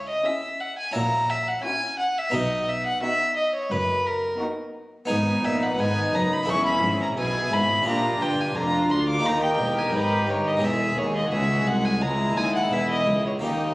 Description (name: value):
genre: classical, baroque-style concerto movement with solo episodes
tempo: 87 BPM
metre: 4/4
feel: straight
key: B major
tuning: A4 = 439 Hz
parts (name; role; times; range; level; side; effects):
- rich violin; melody; 0.0-13.7 s; A#4 to D6; -24 LUFS; equal; none
- harpsichord; accompaniment; 0.0-13.7 s; B#1 to G#4; -31 LUFS; equal; none
- rich chamber double bass section; bass; 0.0-13.7 s; E1 to D#2; -32 LUFS; equal; none
- warm chamber cello section; bass; 0.0-13.7 s; B#1 to C#3; -29 LUFS; right 1 dB; none
- warm chamber violin section; melody; 0.3-13.7 s; E#4 to B4; -33 LUFS; left 1 dB; none
- dark studio violin section; second line; 0.3-13.7 s; B3 to G#4; -32 LUFS; left 1 dB; none
- dark chamber viola section; accompaniment; 0.3-13.7 s; G#3 to D#4; -30 LUFS; equal; none
room: moderate recital hall reverb, RT60 1.4 s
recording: recorded on a phone in the room, studio reverb, compression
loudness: -21 LUFS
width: side -20 dB against mid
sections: 0.0-13.7 A section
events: none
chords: 0.0 C#m; 1.0 F#7/A#; 2.3 B; 5.1 G#m; 6.5 E; 7.9 A#7; 9.2 D#; 10.6 C#m/E